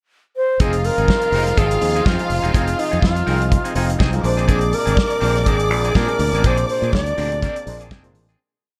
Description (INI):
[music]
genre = disco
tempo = 123 BPM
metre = 4/4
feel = swing 56% on 16ths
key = unclear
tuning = A4 = 440 Hz
[part]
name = bright reedy wooden-headed alto flute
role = melody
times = 0.4-7.9 s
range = Eb4 to D5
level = -24 LUFS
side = equal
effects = none
[part]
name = rich studio string section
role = second line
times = 0.6-7.9 s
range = F4 to D6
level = -29 LUFS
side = equal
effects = none
[part]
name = electric guitar at the edge of break-up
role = accompaniment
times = 0.6-8.4 s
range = C4 to Bb4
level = -31 LUFS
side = equal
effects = none
[part]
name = overdriven clav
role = accompaniment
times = 0.6-8.3 s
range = Bb2 to D5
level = -30 LUFS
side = equal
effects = auto-wah
[part]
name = overdriven tonewheel organ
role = sustained chords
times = 0.6-8.4 s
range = C3 to Eb4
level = -34 LUFS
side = equal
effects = none
[part]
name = fingered electric bass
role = bass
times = 0.6-8.3 s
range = Fb1 to Bb2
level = -23 LUFS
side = equal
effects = none
[part]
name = warm soul drum kit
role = drums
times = 0.6-8.4 s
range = hi-hat, kick drum, snare drum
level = -23 LUFS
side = equal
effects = none
[sound]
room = light reverb, studio reverb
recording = none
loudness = -18 LUFS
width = mono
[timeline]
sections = 0.0-0.6 pickup bar; 0.6-8.4 pre-chorus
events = fade-out 6.4-8.4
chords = 0.0 N.C.; 0.6 Fm7; 4.2 Bb9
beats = 0.12 | 0.60 1.09 1.57 2.06 | 2.55 3.03 3.52 4.01 | 4.49 4.98 5.47 5.96 | 6.45 6.94 7.42 7.92